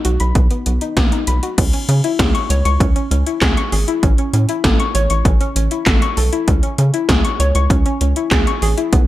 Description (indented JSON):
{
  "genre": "synth-pop",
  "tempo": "98 BPM",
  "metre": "4/4",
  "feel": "straight",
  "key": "C# minor",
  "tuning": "A4 = 440 Hz",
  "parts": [
    { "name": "soft round pluck", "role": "arpeggios", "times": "0.0-9.0 s", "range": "B3 to C#6", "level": "-20 LUFS", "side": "left 2 dB", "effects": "chorus, tape echo" },
    { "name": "80s electronic pad drums", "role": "drums", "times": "0.0-9.1 s", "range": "crash cymbal, handclaps, hi-hat, kick drum, snare drum", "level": "-16 LUFS", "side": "equal", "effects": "overdrive, gated reverb" },
    { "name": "rubbery square bass", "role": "bass", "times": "0.1-9.1 s", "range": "G#1 to C#3", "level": "-16 LUFS", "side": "equal", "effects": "none" }
  ],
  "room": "little or no reverb",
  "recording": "none",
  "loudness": "-13 LUFS",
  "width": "side -15 dB against mid",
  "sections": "0.0-1.6 A section; 1.6-9.1 B section",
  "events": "none",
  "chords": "0.0 B; 1.6 C#m; 4.0 A; 6.5 C#m"
}